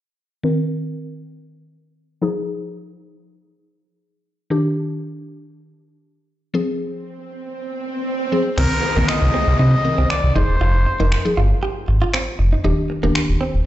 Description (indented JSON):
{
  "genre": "dance-pop",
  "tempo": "118 BPM",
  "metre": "4/4",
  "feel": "straight",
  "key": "C minor",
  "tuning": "A4 = 440 Hz",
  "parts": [
    { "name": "mallet-like synth pluck", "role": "accompaniment", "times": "0.4-13.6 s", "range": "D3 to Bb4", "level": "-22 LUFS", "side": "left 1 dB", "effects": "chorus, low-pass filter" },
    { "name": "swell and downlifter", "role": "sound effects", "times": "7.3-12.6 s", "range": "none", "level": "-26 LUFS", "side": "right 1 dB", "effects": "none" },
    { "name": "warm oboe", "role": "melody", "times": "8.6-11.3 s", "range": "Bb4 to Eb5", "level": "-23 LUFS", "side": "left 2 dB", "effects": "dub echo" },
    { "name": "direct-recorded clean electric guitar", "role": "riff", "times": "8.6-13.5 s", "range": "Bb3 to G4", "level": "-26 LUFS", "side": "right 4 dB", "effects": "lush chorus" },
    { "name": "sub bass with octave", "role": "bass", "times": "8.6-13.6 s", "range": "D1 to C3", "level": "-16 LUFS", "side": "equal", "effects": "none" },
    { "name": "gated 80s digital drum machine", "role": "drums", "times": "8.6-13.3 s", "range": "crash cymbal, finger snaps", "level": "-25 LUFS", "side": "equal", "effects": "none" }
  ],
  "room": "light reverb",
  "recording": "played on a big sound system in a bare room, large studio reverb, nothing above 8.0 kHz",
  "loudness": "-17 LUFS",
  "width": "side -14 dB against mid",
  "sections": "0.4-8.6 A section; 8.6-13.7 B section",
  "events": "filter sweep on synth pluck 0.4-8.6; swell 7.3-8.6",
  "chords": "0.4 Cm7; 2.2 Fm7; 4.5 Ebmaj7; 6.5 Ab6; 8.6 Cm7; 10.4 Fm7; 12.6 Ebmaj7"
}